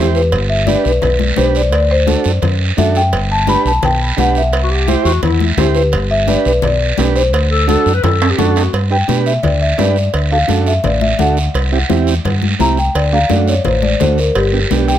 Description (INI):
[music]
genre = latin, cumbia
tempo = 171 BPM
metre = 4/4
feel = straight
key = G major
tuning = A4 = 439 Hz
[part]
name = marimba with soft mallets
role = melody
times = 0.0-15.0 s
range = G4 to B5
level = -17 LUFS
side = left 2 dB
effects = analog delay
[part]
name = combo organ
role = accompaniment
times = 0.0-15.0 s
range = A3 to C5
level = -18 LUFS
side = right 8 dB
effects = none
[part]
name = fingered electric bass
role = bass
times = 0.0-15.0 s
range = G1 to B2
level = -15 LUFS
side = equal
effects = none
[part]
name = guiro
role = percussion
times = 0.1-15.0 s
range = none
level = -24 LUFS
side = right 6 dB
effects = none
[part]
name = cowbell and timbales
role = percussion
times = 0.3-14.5 s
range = none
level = -22 LUFS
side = right 6 dB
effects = none
[part]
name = congas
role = percussion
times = 0.7-14.9 s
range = none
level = -21 LUFS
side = left 9 dB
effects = none
[part]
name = breathy clarinet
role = second line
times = 4.6-8.7 s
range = E4 to B4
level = -18 LUFS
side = left 6 dB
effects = none
[sound]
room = little or no reverb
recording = close, detailed microphones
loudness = -11 LUFS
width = side -11 dB against mid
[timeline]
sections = 0.0-8.7 A section; 8.7-15.0 B section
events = drum fill 8.0-8.7; marimba solo 8.7-15.0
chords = 0.3 G; 1.7 D7; 3.1 G; 4.5 C; 5.9 G; 7.3 D7; 8.7 G; 10.1 D; 11.5 C; 13.0 D; 14.4 G